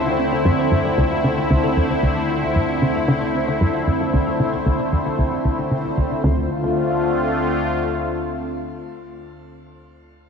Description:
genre	ambient, sequencer-driven space music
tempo	114 BPM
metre	4/4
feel	straight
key	D minor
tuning	A4 = 440 Hz
part	sweeping resonant pad	sustained chords	0.0-9.6 s	D3 to F4	-20 LUFS	left 1 dB	chorus, shimmer reverb
part	thumb-piano-like synth pluck	arpeggios	0.0-6.5 s	C4 to D5	-30 LUFS	right 1 dB	none
part	tight sequencer bass	riff	0.0-6.5 s	D2 to D3	-21 LUFS	equal	lush chorus, ping-pong delay
part	analog drone	bass	0.0-7.8 s	D2	-36 LUFS	equal	chorus
part	bubbling stepped-filter texture	texture	0.0-6.2 s	C5	-29 LUFS	left 2 dB	chorus, built-in reverb, shimmer reverb
room	wet concert hall reverb, RT60 2.4 s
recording	dark, warm production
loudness	-17 LUFS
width	side -6 dB against mid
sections	0.0-6.2 A section; 6.2-10.3 B section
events	fade-out on synth drone 0.0-6.2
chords	0.0 Dm7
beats	0.45 0.98 1.50 | 2.03 2.56 3.08 3.61 | 4.13 4.66 5.19 5.71 | 6.24 6.77 7.29 7.82 | 8.35 8.87 9.40

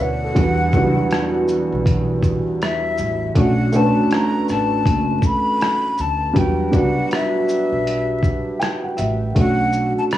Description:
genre	lo-fi hip hop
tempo	80 BPM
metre	4/4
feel	swing 62% on 16ths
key	unclear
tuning	A4 = 436 Hz
part	breathy jazz flute	melody	0.0-10.2 s	E5 to B5	-23 LUFS	left 2 dB	none
part	dark upright piano	accompaniment	0.0-10.2 s	E2 to G5	-19 LUFS	right 1 dB	cassette tape
part	upright bass	bass	0.0-9.9 s	F#1 to E2	-24 LUFS	equal	none
part	lo-fi sampler-style drum kit	drums	0.4-10.2 s	hi-hat, kick drum, rim click, shaker	-21 LUFS	equal	none
room	light reverb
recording	worn, warbling old tape, cassette tape, vinyl crackle, warbly pitch drift, small room ambience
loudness	-16 LUFS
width	side -13 dB against mid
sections	0.0-10.2 A section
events	none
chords	0.4 Em9; 3.4 Bm7; 6.4 Em9; 9.4 Bm7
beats	| 0.36 1.11 1.86 2.61 | 3.36 4.11 4.86 5.61 | 6.36 7.11 7.86 8.61 | 9.36 10.11

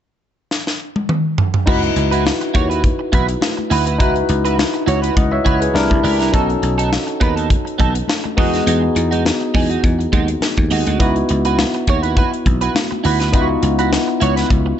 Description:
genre	polished 1980s jazz-funk pop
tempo	103 BPM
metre	4/4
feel	swing 54% on 16ths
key	C# minor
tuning	A4 = 440 Hz
part	crisp fusion drum kit	drums	0.5-14.7 s	crash cymbal, hi-hat, kick drum, snare drum, toms	-18 LUFS	equal	none
part	barky tine electric piano	accompaniment	1.7-14.8 s	B3 to F#5	-20 LUFS	left 2 dB	lush chorus
part	clean electric guitar	riff	1.7-14.7 s	G#3 to C#5	-22 LUFS	right 7 dB	analog chorus
part	dry thumbed slap bass	bass	1.7-14.7 s	B1 to E2	-19 LUFS	equal	none
part	congas	percussion	2.3-14.7 s	none	-30 LUFS	left 8 dB	none
room	little or no reverb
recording	dark, warm production, nothing above 8.0 kHz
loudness	-14 LUFS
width	side -10 dB against mid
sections	0.0-1.7 A section; 1.7-14.8 B section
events	drum fill 0.5-1.7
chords	0.0 N.C.; 1.7 C#m11; 5.8 C9; 6.3 B7; 8.4 Emaj9; 11.0 C#m11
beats	0.51 1.09 | 1.67 2.26 2.84 3.42 | 4.00 4.59 5.17 5.75 | 6.34 6.92 7.50 8.08 | 8.67 9.25 9.83 10.42 | 11.00 11.58 12.17 12.75 | 13.33 13.92 14.50

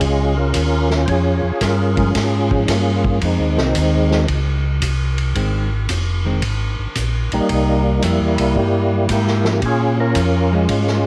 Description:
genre	soul jazz organ trio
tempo	112 BPM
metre	4/4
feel	swing 68% on 8ths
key	F minor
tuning	A4 = 439 Hz
part	percussive tonewheel organ	melody	0.0-11.1 s	G3 to Db5	-21 LUFS	equal	slow rotary speaker, overdrive, chorus vibrato
part	mellow tonewheel organ	bass	0.0-11.1 s	F1 to Bb2	-21 LUFS	equal	chorus vibrato, slow rotary speaker
part	vintage drum kit	drums	0.0-11.1 s	hi-hat, kick drum, ride cymbal, snare drum	-26 LUFS	equal	none
part	hollow-body jazz guitar	accompaniment	2.0-10.7 s	Eb3 to Db4	-29 LUFS	equal	none
room	light reverb, small room ambience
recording	none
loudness	-18 LUFS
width	mono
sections	0.0-11.1 A section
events	none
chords	0.0 Bbm7; 3.2 Fm7; 7.5 C7; 9.6 Bbm7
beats	0.01 0.55 | 1.08 1.62 2.15 2.68 | 3.22 3.75 4.29 4.82 | 5.36 5.89 6.42 6.96 | 7.49 8.03 8.56 9.10 | 9.63 10.17 10.70

